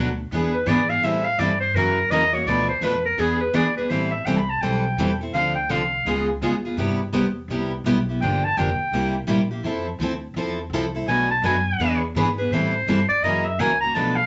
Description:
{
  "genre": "acoustic string swing (jazz manouche)",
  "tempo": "167 BPM",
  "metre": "4/4",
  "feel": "swing 62% on 8ths",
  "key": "A minor",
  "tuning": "A4 = 440 Hz",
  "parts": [
    { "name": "picked steel-string acoustic guitar", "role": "accompaniment", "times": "0.0-14.2 s", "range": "B2 to A4", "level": "-28 LUFS", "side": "equal", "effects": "none" },
    { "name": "picked steel-string acoustic guitar", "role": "accompaniment", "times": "0.0-14.2 s", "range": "B2 to B4", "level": "-28 LUFS", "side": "equal", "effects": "none" },
    { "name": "upright bass", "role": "bass", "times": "0.0-14.3 s", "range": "F1 to A2", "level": "-32 LUFS", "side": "equal", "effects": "none" },
    { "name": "clear clarinet", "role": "second line", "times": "0.5-14.3 s", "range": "G#4 to B5", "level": "-24 LUFS", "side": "equal", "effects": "none" }
  ],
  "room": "wet studio ambience, RT60 0.5 s",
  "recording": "nothing above 7.8 kHz",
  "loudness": "-22 LUFS",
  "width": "mono",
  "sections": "0.0-3.9 A section; 3.9-14.3 A section",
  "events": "clarinet solo 0.0-14.3",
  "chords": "0.3 E7; 1.0 Am7; 1.8 F#7; 2.5 Bm7b5; 3.2 E7; 3.9 Am9; 5.3 Dm7; 6.1 C#9; 6.8 Cmaj7; 8.2 Gm7; 8.9 C7; 9.6 Fmaj7; 11.1 Bm7; 11.8 E7; 12.5 Am7; 13.2 F#7"
}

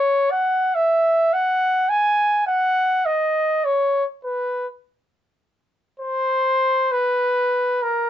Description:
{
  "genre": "classical, free, expressive piece for unaccompanied trumpet",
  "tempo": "68 BPM",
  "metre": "4/4",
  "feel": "rubato",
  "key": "B major",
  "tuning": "A4 = 442 Hz",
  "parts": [
    { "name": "warm trumpet", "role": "solo", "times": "0.0-8.1 s", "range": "A#4 to G#5", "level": "-18 LUFS", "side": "equal", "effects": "none" }
  ],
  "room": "light reverb",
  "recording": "dark, warm production, nothing above 7.8 kHz",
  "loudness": "-18 LUFS",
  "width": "side -11 dB against mid",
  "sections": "0.0-8.1 A section",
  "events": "none",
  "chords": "none"
}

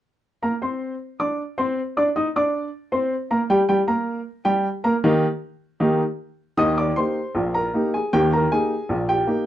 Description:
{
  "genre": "ragtime piano",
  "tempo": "78 BPM",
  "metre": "2/4",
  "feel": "straight",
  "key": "Eb major",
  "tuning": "A4 = 440 Hz",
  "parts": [
    { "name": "warm upright piano", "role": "solo", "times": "0.4-9.5 s", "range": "Bb1 to Eb6", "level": "-19 LUFS", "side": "equal", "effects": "none" }
  ],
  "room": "light reverb",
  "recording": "dark, warm production",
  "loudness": "-20 LUFS",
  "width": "side -12 dB against mid",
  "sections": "0.4-6.6 A section; 6.6-9.5 B section",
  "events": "none",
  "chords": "0.4 Eb"
}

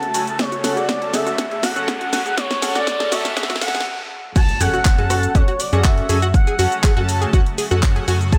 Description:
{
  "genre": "progressive house",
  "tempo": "121 BPM",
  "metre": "4/4",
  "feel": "straight",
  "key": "F# minor",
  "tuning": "A4 = 440 Hz",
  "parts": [
    { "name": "expressive portamento lead", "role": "melody", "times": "0.0-8.4 s", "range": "C#5 to A5", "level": "-26 LUFS", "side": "equal", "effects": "lush chorus, sidechain pumping, digital delay" },
    { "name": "shimmering ambient pad", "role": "sustained chords", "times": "0.0-8.4 s", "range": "C#3 to A4", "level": "-35 LUFS", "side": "equal", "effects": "chorus, built-in reverb, phaser, sidechain pumping" },
    { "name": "tight sequenced synth", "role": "arpeggios", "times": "0.0-8.4 s", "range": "F#4 to G#5", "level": "-29 LUFS", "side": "equal", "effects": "chorus, phaser, sidechain pumping, digital delay" },
    { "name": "chorused polysynth", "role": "stabs", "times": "0.0-8.2 s", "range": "C#4 to A5", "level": "-28 LUFS", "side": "equal", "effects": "sidechain pumping" },
    { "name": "house drum kit", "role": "drums", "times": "0.0-8.4 s", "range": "cabasa, crash cymbal, handclaps, hi-hat, rim click, snare drum", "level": "-27 LUFS", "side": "equal", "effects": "none" },
    { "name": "riser and impact", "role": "sound effects", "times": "0.1-6.3 s", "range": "none", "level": "-32 LUFS", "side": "equal", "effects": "none" },
    { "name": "electronic kick drum", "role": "drums", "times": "0.4-8.4 s", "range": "none", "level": "-18 LUFS", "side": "equal", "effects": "high-pass filter on kick, high-pass filter on room" },
    { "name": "tight sequencer bass", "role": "bass", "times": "4.6-8.4 s", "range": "E2 to F#2", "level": "-22 LUFS", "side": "equal", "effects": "sidechain pumping" }
  ],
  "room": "light reverb, digital ambience",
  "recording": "high-pass filter",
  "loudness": "-18 LUFS",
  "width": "mono",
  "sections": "0.0-4.4 A section; 4.4-8.4 B section",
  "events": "build-up 0.0-4.4; drum fill 0.0-3.9; riser 0.1-3.9; filter sweep on synth arpeggio sound 0.0-4.4; filter sweep on analog polysynth 0.0-4.4; filter sweep 0.0-4.4; stop 3.9-4.4; drop 4.4-8.4; impact 4.4-6.3",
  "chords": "0.0 F#m"
}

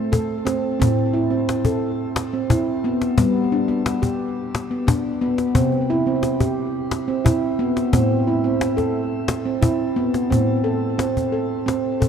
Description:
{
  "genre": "world meditative, meditative tuned percussion",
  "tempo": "177 BPM (eighths)",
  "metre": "7/8",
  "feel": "straight",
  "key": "A minor",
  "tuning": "A4 = 440 Hz",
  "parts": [
    { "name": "handpan", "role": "arpeggios", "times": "0.0-12.1 s", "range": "A2 to A4", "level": "-19 LUFS", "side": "right 1 dB", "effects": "ping-pong delay, shimmer reverb" },
    { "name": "cajon", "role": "percussion", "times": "0.1-12.1 s", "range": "none", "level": "-22 LUFS", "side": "left 2 dB", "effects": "none" }
  ],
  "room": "wet church reverb, RT60 3.3 s",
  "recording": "dark, warm production",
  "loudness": "-18 LUFS",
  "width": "side -7 dB against mid",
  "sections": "0.8-10.3 A section; 10.3-12.1 B section",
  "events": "none",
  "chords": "0.0 Am; 3.2 G; 5.6 C; 7.9 Am"
}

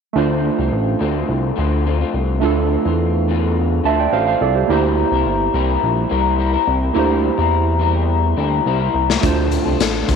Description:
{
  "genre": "indie pop, bedroom pop",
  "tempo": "106 BPM",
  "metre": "4/4",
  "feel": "straight",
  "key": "D minor",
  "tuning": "A4 = 439 Hz",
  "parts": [
    { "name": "warbly lo-fi synth keys", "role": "accompaniment", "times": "0.1-10.2 s", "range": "A3 to A5", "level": "-20 LUFS", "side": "right 11 dB", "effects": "chorus, cassette tape" },
    { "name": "electric guitar through a small old amp", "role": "accompaniment", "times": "0.2-10.2 s", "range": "D3 to Bb4", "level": "-21 LUFS", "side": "left 11 dB", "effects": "wide subtle chorus, vibrato effect" },
    { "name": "chorused synth bass", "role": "bass", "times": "0.2-10.2 s", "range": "G1 to E2", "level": "-19 LUFS", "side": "equal", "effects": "none" },
    { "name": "raw garage drum kit", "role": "drums", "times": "9.1-10.2 s", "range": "hi-hat, kick drum, snare drum", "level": "-18 LUFS", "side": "left 5 dB", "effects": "none" }
  ],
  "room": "light reverb, studio reverb",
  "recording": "1960s-style stereo with parts hard left and right",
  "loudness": "-15 LUFS",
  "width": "side -6 dB against mid",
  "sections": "0.2-10.2 A section",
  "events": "drum fill 8.7-9.2",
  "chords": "0.2 Dm7; 4.7 C7; 9.2 Dm7"
}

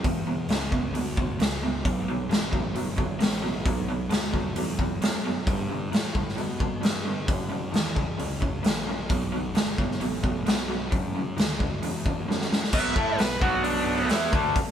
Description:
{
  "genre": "blues rock power trio and southern rock",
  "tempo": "132 BPM",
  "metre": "4/4",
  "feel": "straight",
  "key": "B minor",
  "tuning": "A4 = 441 Hz",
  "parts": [
    { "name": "raw garage guitar", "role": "riff", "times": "0.0-14.6 s", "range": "E2 to A4", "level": "-29 LUFS", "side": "right 1 dB", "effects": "overdrive" },
    { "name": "fuzz picked electric bass", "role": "bass", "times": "0.0-14.5 s", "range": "G1 to B2", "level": "-33 LUFS", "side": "equal", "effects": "overdrive" },
    { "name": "raw garage drum kit", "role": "drums", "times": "0.0-14.7 s", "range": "crash cymbal, hi-hat, kick drum, snare drum", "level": "-26 LUFS", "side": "equal", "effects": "none" },
    { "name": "biting lead guitar", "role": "melody", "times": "12.7-14.1 s", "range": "D4 to E5", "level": "-29 LUFS", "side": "right 1 dB", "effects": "overdrive" }
  ],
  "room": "light reverb",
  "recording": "band playing live in one room",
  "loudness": "-24 LUFS",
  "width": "side -9 dB against mid",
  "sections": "0.0-12.7 A section; 12.7-14.7 B section",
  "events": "drum fill 12.3-12.7; lead electric guitar solo 12.7-14.7",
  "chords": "0.0 E7(no3); 1.8 Bm7; 5.5 G; 7.3 F#7; 9.1 B5; 10.9 F#5; 12.7 Bm"
}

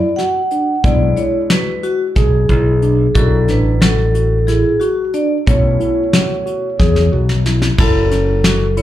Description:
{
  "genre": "progressive instrumental, band music in an uneven meter",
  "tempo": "182 BPM (eighths)",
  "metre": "7/8",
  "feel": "straight",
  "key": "unclear",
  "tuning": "A4 = 445 Hz",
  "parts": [
    { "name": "vibraphone with medium mallets", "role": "melody", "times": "0.0-8.8 s", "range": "F#4 to F#5", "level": "-18 LUFS", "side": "equal", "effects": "plate reverb, slapback echo" },
    { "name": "warm grand piano", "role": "accompaniment", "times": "0.0-8.8 s", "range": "B2 to A4", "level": "-26 LUFS", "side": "left 1 dB", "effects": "plate reverb, slapback echo" },
    { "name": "overdriven tine electric piano", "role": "arpeggios", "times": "0.0-8.8 s", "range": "B3 to G#4", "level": "-20 LUFS", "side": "right 1 dB", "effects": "phaser, plate reverb, slapback echo" },
    { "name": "soft brush drum kit", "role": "drums", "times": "0.2-8.8 s", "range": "crash cymbal, hi-hat, kick drum, snare drum", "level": "-16 LUFS", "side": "equal", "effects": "none" },
    { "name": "modern bright fingered electric bass", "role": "bass", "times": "0.8-8.8 s", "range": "F#1 to E2", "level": "-14 LUFS", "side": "equal", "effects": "none" }
  ],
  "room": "light reverb",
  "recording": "live gig heard through the venue's PA, club reverb",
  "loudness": "-12 LUFS",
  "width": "side -13 dB against mid",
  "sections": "0.0-7.8 A section; 7.8-8.8 B section",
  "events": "drum fill 6.8-7.8",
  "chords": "0.0 Bm7; 0.8 E7/B; 3.2 Dadd9; 5.5 A/B; 7.8 F#m7"
}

